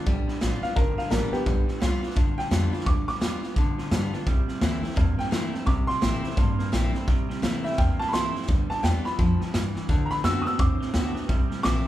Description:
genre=rockabilly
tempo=171 BPM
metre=4/4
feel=swing 62% on 8ths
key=G mixolydian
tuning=A4 = 440 Hz
part: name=picked steel-string acoustic guitar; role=accompaniment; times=0.0-11.9 s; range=G2 to F#4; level=-30 LUFS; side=left 2 dB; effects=none
part: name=electric guitar through a small old amp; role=riff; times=0.0-11.9 s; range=G2 to C4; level=-33 LUFS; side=right 5 dB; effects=none
part: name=upright bass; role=bass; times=0.1-11.9 s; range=G1 to G2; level=-28 LUFS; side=equal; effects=none
part: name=raw garage drum kit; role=drums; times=0.1-11.7 s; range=hi-hat, kick drum, snare drum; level=-26 LUFS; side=equal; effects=none
part: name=clear upright piano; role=melody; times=0.6-11.8 s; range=B3 to E6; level=-30 LUFS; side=equal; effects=none
room=moderate large studio reverb, RT60 0.9 s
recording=band playing live in one room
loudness=-22 LUFS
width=side -14 dB against mid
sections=0.0-11.9 A section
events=upright piano solo 0.0-11.9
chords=0.0 G7; 4.3 C7; 8.5 G7; 9.9 D7; 11.3 C7

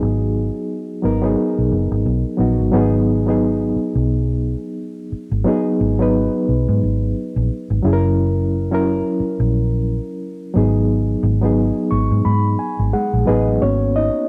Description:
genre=lush 1970s-style soul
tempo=88 BPM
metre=4/4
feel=swing 58% on 16ths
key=G# minor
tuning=A4 = 440 Hz
part: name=reed electric piano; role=accompaniment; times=0.0-14.3 s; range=F#3 to C#6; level=-21 LUFS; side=equal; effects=overdrive, harmonic tremolo, cassette tape
part: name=vintage muted fingered electric bass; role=bass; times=0.0-14.1 s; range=F#1 to G#2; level=-20 LUFS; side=equal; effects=none
room=light reverb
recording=home recording on cassette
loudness=-18 LUFS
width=mono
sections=0.0-2.7 A section; 2.7-13.6 B section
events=reed electric piano fill 11.6-13.6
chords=0.0 G#m7; 7.8 F#7; 10.6 G#m7

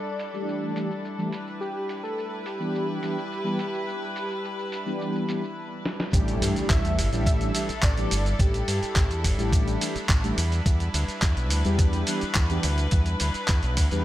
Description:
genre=nu-disco, nu disco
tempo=106 BPM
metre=4/4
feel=straight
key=unclear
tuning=A4 = 440 Hz
part: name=wide unison lead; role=melody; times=0.0-9.5 s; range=G4 to E5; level=-33 LUFS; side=equal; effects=cassette tape, tape echo
part: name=warm studio string section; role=sustained chords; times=0.0-14.0 s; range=G3 to B4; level=-33 LUFS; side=left 1 dB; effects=sidechain pumping
part: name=dusty soul sampler-style drum kit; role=drums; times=0.2-14.0 s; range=handclaps, hi-hat, ride cymbal, shaker, snare drum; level=-31 LUFS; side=right 1 dB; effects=low-pass filter on perc, low-pass filter on hats, low-pass filter on snare, low-pass filter on cymbals, low-pass filter on room
part: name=mellow synth brass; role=accompaniment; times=0.3-14.0 s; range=E3 to G4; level=-30 LUFS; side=equal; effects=chorus, sidechain pumping, tape echo
part: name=fingered electric bass with an envelope filter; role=bass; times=6.1-14.0 s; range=G1 to G2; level=-26 LUFS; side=equal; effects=sidechain pumping
part: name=electronic kick drum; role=drums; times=6.1-13.9 s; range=none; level=-23 LUFS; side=equal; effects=none
part: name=impact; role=sound effects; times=6.1-8.4 s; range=none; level=-34 LUFS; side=equal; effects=none
room=light reverb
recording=none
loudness=-23 LUFS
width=side -14 dB against mid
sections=0.0-6.1 A section; 6.1-14.0 B section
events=filter sweep on analog polysynth 0.0-6.1; break 5.6-6.1; drum fill 5.8; drop 6.1-14.0; impact 6.1-8.4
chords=0.0 A7sus4; 1.3 Em7; 6.1 A7sus4; 10.4 Em7

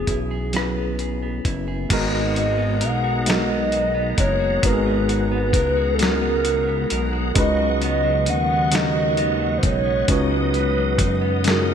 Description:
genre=slow six-eight R&B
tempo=44 BPM (dotted quarters)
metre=6/8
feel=straight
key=G# minor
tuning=A4 = 438 Hz
part: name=hollow clarinet-like synth lead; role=melody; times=0.0-11.7 s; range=G#4 to F#5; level=-23 LUFS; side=equal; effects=chorus, ping-pong delay
part: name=clean electric guitar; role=second line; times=0.0-11.7 s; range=C#3 to A#4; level=-30 LUFS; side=right 5 dB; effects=none
part: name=tine electric piano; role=accompaniment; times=0.0-11.7 s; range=F#3 to C#5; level=-25 LUFS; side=left 1 dB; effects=overdrive, fast stereo tremolo
part: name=fat analog bass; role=bass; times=0.0-11.7 s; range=F#1 to F#2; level=-24 LUFS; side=equal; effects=none
part: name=dusty soul sampler-style drum kit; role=drums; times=0.1-11.7 s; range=crash cymbal, hi-hat, kick drum, rim click, snare drum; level=-23 LUFS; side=equal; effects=overdrive
part: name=bright tonewheel organ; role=sustained chords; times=1.9-11.7 s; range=B3 to D#6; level=-29 LUFS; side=equal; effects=overdrive, chorus vibrato, slow rotary speaker
room=moderate lush hall reverb, RT60 3.0 s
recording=bright 1980s-style digital production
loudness=-18 LUFS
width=side -8 dB against mid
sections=0.0-1.9 A section; 1.9-11.7 B section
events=none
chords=0.0 F#9sus4; 1.9 G#m9; 7.4 C#9sus4

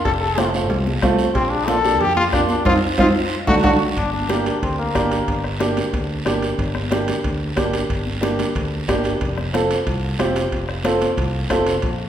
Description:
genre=latin, cumbia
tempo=183 BPM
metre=4/4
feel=straight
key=G minor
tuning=A4 = 443 Hz
part: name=brilliant trombone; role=second line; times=0.0-5.4 s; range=Bb3 to A4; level=-21 LUFS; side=left 2 dB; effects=none
part: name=fingered electric bass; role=bass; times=0.1-12.1 s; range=F1 to F2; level=-25 LUFS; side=equal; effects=none
part: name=bombo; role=percussion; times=0.1-12.0 s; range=none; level=-27 LUFS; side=left 1 dB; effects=none
part: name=congas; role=percussion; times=0.1-12.0 s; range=none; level=-27 LUFS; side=left 2 dB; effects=none
part: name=cowbell and timbales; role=percussion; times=0.1-12.0 s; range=none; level=-30 LUFS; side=right 2 dB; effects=none
part: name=guiro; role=percussion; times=0.1-12.1 s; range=none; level=-32 LUFS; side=right 3 dB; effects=none
part: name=warm upright piano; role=accompaniment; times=0.4-11.7 s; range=F#3 to A4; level=-21 LUFS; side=right 2 dB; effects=none
room=wet recital hall reverb, RT60 1.6 s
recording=recorded in a church or concert hall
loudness=-17 LUFS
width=side -10 dB against mid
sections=0.0-4.0 A section; 4.0-12.1 B section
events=trombone solo 0.0-4.0; drum fill 2.7-4.0; band accent 2.7-4.0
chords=0.1 F; 1.4 Bb; 2.7 F5; 3.3 D; 4.0 Gm; 9.2 F

